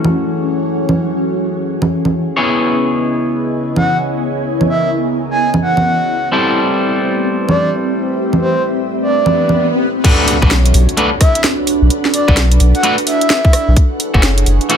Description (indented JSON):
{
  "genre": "UK garage, two-step garage",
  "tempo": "129 BPM",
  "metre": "4/4",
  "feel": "swing 63% on 16ths",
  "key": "B dorian",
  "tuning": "A4 = 438 Hz",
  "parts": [
    { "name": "warm analog pad", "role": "sustained chords", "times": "0.0-14.8 s", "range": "C#3 to D#5", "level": "-24 LUFS", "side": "equal", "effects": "chorus, sidechain pumping" },
    { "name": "electric guitar at the edge of break-up", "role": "stabs", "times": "0.0-14.8 s", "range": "E3 to C#5", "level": "-18 LUFS", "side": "left 1 dB", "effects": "low-pass filter, tape echo" },
    { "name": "garage drum kit", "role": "drums", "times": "0.0-14.8 s", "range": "congas, crash cymbal, hi-hat, rim click, snare drum", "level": "-16 LUFS", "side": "right 2 dB", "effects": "overdrive" },
    { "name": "ethereal airy pad", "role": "texture", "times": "0.0-14.8 s", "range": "B3 to G#5", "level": "-20 LUFS", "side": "equal", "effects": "ensemble chorus, built-in reverb, phaser, sidechain pumping" },
    { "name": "breathy flute-like synth lead", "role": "melody", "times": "3.8-13.7 s", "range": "C5 to G#5", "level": "-17 LUFS", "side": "right 1 dB", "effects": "chorus, tape echo" },
    { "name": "swell and impact", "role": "sound effects", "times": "9.3-11.9 s", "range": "none", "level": "-22 LUFS", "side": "left 1 dB", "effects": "none" },
    { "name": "electronic kick drum", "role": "drums", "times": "10.0-14.2 s", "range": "none", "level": "-11 LUFS", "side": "equal", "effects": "overdrive" },
    { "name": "saturated sub bass", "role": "bass", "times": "10.4-14.6 s", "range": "F#1 to B1", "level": "-10 LUFS", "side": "equal", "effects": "none" }
  ],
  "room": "light reverb, digital ambience",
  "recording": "none",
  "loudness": "-12 LUFS",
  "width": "side -8 dB against mid",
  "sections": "0.0-10.0 A section; 10.0-14.8 B section",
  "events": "swell 9.3-10.0; drop 10.0-14.8; impact 10.0-11.9",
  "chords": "0.0 F#m7; 2.4 C#m7; 6.3 Am7; 10.0 Bm7; 13.8 F#m7"
}